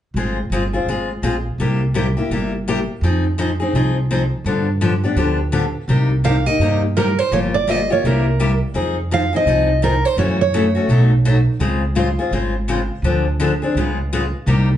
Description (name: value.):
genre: acoustic string swing (jazz manouche).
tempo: 168 BPM.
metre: 4/4.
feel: swing 61% on 8ths.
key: C minor.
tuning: A4 = 440 Hz.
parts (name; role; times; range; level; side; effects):
upright bass; bass; 0.1-14.8 s; G1 to G2; -19 LUFS; right 1 dB; none.
picked steel-string acoustic guitar; accompaniment; 0.2-14.7 s; B2 to Ab4; -19 LUFS; left 2 dB; none.
picked steel-string acoustic guitar; melody; 6.2-11.1 s; Bb4 to F5; -18 LUFS; right 3 dB; plate reverb.
room: wet club reverb, RT60 0.8 s.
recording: heard from further back in the room, nothing above 10.4 kHz.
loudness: -16 LUFS.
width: side -11 dB against mid.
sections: 0.1-5.9 A section; 5.9-14.8 B section.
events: none.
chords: 0.1 Ab6; 1.6 C7; 3.0 Fm7; 4.4 G7; 5.9 Cm7; 7.3 Gm7b5; 8.0 C7; 8.7 Fm7; 10.2 F#m7; 10.9 B7; 11.6 Dbmaj7; 13.0 Dm7b5; 13.7 Db7.